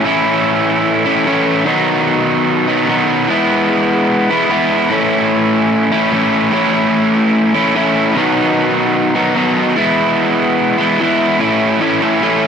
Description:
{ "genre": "rock", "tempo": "148 BPM", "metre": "4/4", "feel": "straight", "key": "A lydian", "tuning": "A4 = 439 Hz", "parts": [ { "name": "overdriven electric guitar", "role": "solo", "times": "0.0-12.5 s", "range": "A2 to E4", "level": "-11 LUFS", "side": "equal", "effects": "cassette tape" } ], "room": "moderate studio reverb, RT60 0.6 s", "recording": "home recording on cassette", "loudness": "-11 LUFS", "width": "side -7 dB against mid", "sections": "0.0-11.4 A section; 11.4-12.5 B section", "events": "none", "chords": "0.0 A; 1.7 B; 3.3 E; 4.9 A; 8.2 B; 9.8 E; 11.4 A", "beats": "| 0.04 0.45 0.85 1.26 | 1.66 2.07 2.48 2.88 | 3.29 3.69 4.10 4.51 | 4.91 5.32 5.72 6.13 | 6.54 6.94 7.35 7.75 | 8.16 8.57 8.97 9.38 | 9.78 10.19 10.59 11.00 | 11.40 11.81 12.21" }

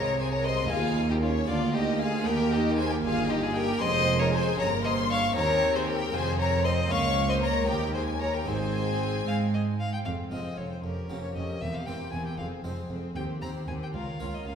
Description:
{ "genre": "classical, baroque-style concerto movement with solo episodes", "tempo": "77 BPM (dotted quarters)", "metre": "6/8", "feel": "straight", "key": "Ab major, F minor from 10.1 s", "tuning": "A4 = 440 Hz", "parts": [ { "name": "rich chamber violin section", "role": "melody", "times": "0.0-14.6 s", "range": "Ab4 to Db6", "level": "-34 LUFS", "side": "left 4 dB", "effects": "none" }, { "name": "rich violin", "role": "melody", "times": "0.0-14.5 s", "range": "F4 to Bb5", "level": "-31 LUFS", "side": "left 2 dB", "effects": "none" }, { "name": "warm symphonic violin section", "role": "second line", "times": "0.0-14.6 s", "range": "Db4 to Db5", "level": "-34 LUFS", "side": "left 3 dB", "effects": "none" }, { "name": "harpsichord", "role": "accompaniment", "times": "0.0-14.6 s", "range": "Db2 to Db5", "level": "-36 LUFS", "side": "equal", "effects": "none" }, { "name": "rich chamber viola section", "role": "accompaniment", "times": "0.0-14.6 s", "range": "Ab3 to F4", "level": "-33 LUFS", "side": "right 3 dB", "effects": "none" }, { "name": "rich chamber cello section", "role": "bass", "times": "0.0-14.5 s", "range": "Db2 to Ab3", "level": "-33 LUFS", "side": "right 3 dB", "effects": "none" }, { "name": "rich studio double bass section", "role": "bass", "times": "0.0-14.5 s", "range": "E1 to Ab2", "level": "-34 LUFS", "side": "right 2 dB", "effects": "none" } ], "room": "wet recital hall reverb, RT60 1.7 s", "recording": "heard from further back in the room", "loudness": "-25 LUFS", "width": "side -7 dB against mid", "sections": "0.0-10.1 A section; 10.1-14.6 B section", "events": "none", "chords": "0.0 Ab; 0.7 Eb5; 1.5 Bb7/D; 2.3 Eb; 3.8 Db/F; 4.6 Gdim; 5.4 Cm/Eb; 6.1 F5; 6.9 Bbm/Db; 7.7 Eb5; 8.5 Ab; 10.1 Fm; 10.8 Gm7b5/F; 11.6 C7/E; 12.4 Fm; 13.2 Cm/Eb; 13.9 Bbm/Db", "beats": "| 0.71 1.49 | 2.27 3.04 | 3.82 4.59 | 5.36 6.13 | 6.91 7.69 | 8.48 9.27 | 10.06 10.84 | 11.62 12.39 | 13.16 13.94" }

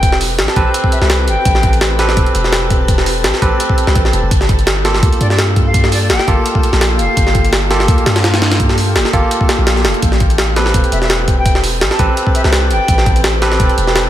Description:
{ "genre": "drum and bass, jungle", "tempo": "168 BPM", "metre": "4/4", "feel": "swing 54% on 16ths", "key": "unclear", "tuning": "A4 = 440 Hz", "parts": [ { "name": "silver concert flute", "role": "melody", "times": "0.0-1.8, 5.2-7.5, 10.9-13.2 s", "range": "D5 to A5", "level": "-22 LUFS", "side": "left 1 dB", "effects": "dub echo" }, { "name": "granular cloud pad", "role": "sustained chords", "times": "0.0-14.1 s", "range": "Bb3 to A5", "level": "-23 LUFS", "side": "left 1 dB", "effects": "built-in reverb" }, { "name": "barky tine electric piano", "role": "stabs", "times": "0.0-14.1 s", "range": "Bb3 to B4", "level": "-18 LUFS", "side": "right 2 dB", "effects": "dub echo" }, { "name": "long sustained 808-style bass", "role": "bass", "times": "0.0-14.1 s", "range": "E1 to G2", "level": "-16 LUFS", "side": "equal", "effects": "none" }, { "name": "jungle sampler-style drum kit", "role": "drums", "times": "0.0-14.0 s", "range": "hi-hat, kick drum, snare drum", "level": "-13 LUFS", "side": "equal", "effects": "none" } ], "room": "little or no reverb", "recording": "none", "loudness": "-10 LUFS", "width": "side -12 dB against mid", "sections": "0.0-14.1 A section", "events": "none", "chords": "0.0 Am9; 4.3 Gm9; 10.0 Am9", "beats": "| 0.03 0.38 0.74 1.10 | 1.46 1.81 2.17 2.53 | 2.88 3.24 3.60 3.96 | 4.31 4.67 5.03 5.38 | 5.74 6.10 6.46 6.81 | 7.17 7.53 7.88 8.24 | 8.60 8.96 9.31 9.67 | 10.03 10.38 10.74 11.10 | 11.46 11.81 12.17 12.53 | 12.88 13.24 13.60 13.96" }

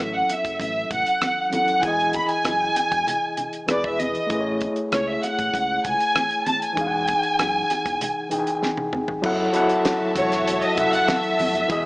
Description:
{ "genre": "lush 1970s-style soul", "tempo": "97 BPM", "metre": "4/4", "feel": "straight", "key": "unclear", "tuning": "A4 = 440 Hz", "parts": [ { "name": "warm studio violin section", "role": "melody", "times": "0.0-11.9 s", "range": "C#5 to B5", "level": "-22 LUFS", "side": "equal", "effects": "none" }, { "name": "overdriven tine electric piano", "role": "accompaniment", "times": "0.0-11.9 s", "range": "E3 to G#5", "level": "-25 LUFS", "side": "left 1 dB", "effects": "medium tremolo" }, { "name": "fingered electric bass", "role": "bass", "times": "0.0-11.9 s", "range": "E1 to C#2", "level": "-35 LUFS", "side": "equal", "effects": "none" }, { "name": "damped 70s drum kit", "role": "drums", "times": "0.3-11.8 s", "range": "crash cymbal, hi-hat, kick drum, rim click, snare drum, toms", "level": "-28 LUFS", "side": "equal", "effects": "none" }, { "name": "congas", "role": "percussion", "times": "0.3-11.8 s", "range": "none", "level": "-34 LUFS", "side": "right 1 dB", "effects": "none" }, { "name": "rich studio string section", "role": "second line", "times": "9.3-11.9 s", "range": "F#4 to B5", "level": "-27 LUFS", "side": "equal", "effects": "none" } ], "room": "light reverb, studio reverb", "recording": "small speaker sound", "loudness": "-20 LUFS", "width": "side -21 dB against mid", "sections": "0.0-9.2 A section; 9.2-11.9 B section", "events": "drum fill 8.6-9.2; violin section solo 9.2-11.9", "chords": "0.0 F#m7; 1.8 Emaj7; 3.7 E; 4.3 Amaj7; 6.8 Emaj9; 9.2 F#m7", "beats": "0.59 1.21 | 1.83 2.45 3.07 3.69 | 4.30 4.92 5.54 6.16 | 6.77 7.39 8.01 8.62 | 9.24 9.85 10.47 11.09 | 11.70" }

